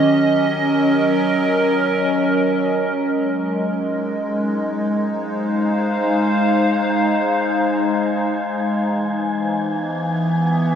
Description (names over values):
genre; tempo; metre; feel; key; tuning
ambient; free time; none; none; Ab major; A4 = 441 Hz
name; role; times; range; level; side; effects
evolving wavetable pad; sustained chords; 0.0-10.8 s; E3 to F5; -17 LUFS; equal; chorus, built-in reverb
wind-like tuned noise texture; texture; 3.8-10.8 s; Ab5; -30 LUFS; left 1 dB; built-in reverb
room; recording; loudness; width
wet huge ambient reverb, RT60 8.5 s; none; -17 LUFS; side -8 dB against mid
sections
0.0-2.8 A section; 2.8-10.8 B section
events
fade-in on synth texture 2.8-10.8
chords
0.0 Gb6; 2.8 Ab6; 8.9 E